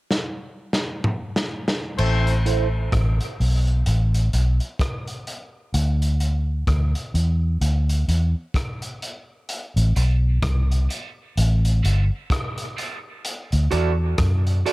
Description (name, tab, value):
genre	dub reggae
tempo	64 BPM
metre	4/4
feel	swing 58% on 16ths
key	A dorian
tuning	A4 = 441 Hz
part	crunchy breakbeat drum kit	drums	0.1-14.7 s	crash cymbal, hi-hat, kick drum, rim click, snare drum, toms	-26 LUFS	equal	none
part	mellow horn section	second line	2.0-2.4 s	A3 to C5	-29 LUFS	left 2 dB	dub echo
part	vintage muted fingered electric bass	bass	2.0-14.6 s	G1 to F#2	-18 LUFS	equal	none
part	electric guitar at the edge of break-up	accompaniment	2.5-2.7, 10.0-14.7 s	C4 to D5	-28 LUFS	right 7 dB	high-pass filter, low-pass filter, dub echo
room	small room ambience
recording	echo-heavy mix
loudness	-19 LUFS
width	side -20 dB against mid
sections	0.0-2.0 A section; 2.0-9.5 B section; 9.5-14.7 C section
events	drum fill 0.1-2.0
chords	0.0 N.C.; 5.7 Dsus2; 9.5 Am; 13.2 D